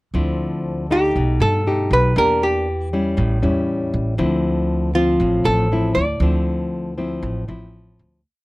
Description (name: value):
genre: bossa nova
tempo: 118 BPM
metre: 4/4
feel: straight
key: D minor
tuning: A4 = 440 Hz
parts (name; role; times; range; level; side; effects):
- nylon-string guitar; accompaniment; 0.1-8.2 s; A2 to G4; -21 LUFS; left 2 dB; none
- upright bass; bass; 0.1-8.2 s; A1 to G2; -22 LUFS; right 1 dB; none
- archtop guitar, miked and amplified; melody; 0.9-7.7 s; F4 to D5; -19 LUFS; right 1 dB; none
room: little or no reverb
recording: dry, close 1970s-style studio recording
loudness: -17 LUFS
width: side -20 dB against mid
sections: 0.1-8.2 A section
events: fade-out 6.2-8.2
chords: 0.1 Dm9; 1.1 Baug7; 2.2 Em7b5; 3.2 A7; 4.2 Dm9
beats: | 0.13 0.64 1.15 1.65 | 2.16 2.67 3.18 3.68 | 4.19 4.70 5.20 5.71 | 6.21 6.72 7.23 7.74